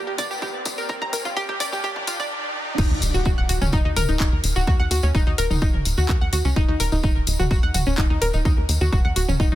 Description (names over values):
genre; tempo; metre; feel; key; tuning
melodic techno; 127 BPM; 4/4; straight; unclear; A4 = 440 Hz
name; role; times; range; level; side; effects
swarming drone; drone; 0.1-2.3 s; Eb3 to Bb3; -43 LUFS; equal; none
riser and impact; sound effects; 0.0-4.7 s; none; -31 LUFS; right 1 dB; none
deep dark ambient pad; texture; 0.0-2.3 s; G4 to G5; -39 LUFS; left 3 dB; none
analog pluck; arpeggios; 0.1-9.6 s; Db4 to Bb5; -25 LUFS; left 1 dB; chorus, sidechain pumping, tape echo
electronic kick drum; drums; 0.2-9.5 s; none; -21 LUFS; equal; overdrive
house drum kit; drums; 0.2-9.6 s; crash cymbal, handclaps, hi-hat, toms; -29 LUFS; equal; overdrive
tambourine; percussion; 0.2-9.5 s; none; -32 LUFS; left 2 dB; none
tight sequencer bass; bass; 2.8-9.6 s; Eb1 to Eb2; -22 LUFS; equal; sidechain pumping
room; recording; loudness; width
little or no reverb; dense, heavily limited modern master, high-pass filter; -19 LUFS; side -14 dB against mid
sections
0.0-2.8 A section; 2.8-9.6 B section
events
build-up 0.0-2.8; drum fill 0.0-2.3; riser 0.0-2.8; drop 2.8-9.6; impact 2.8-4.7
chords
0.0 Gm; 2.8 Ebm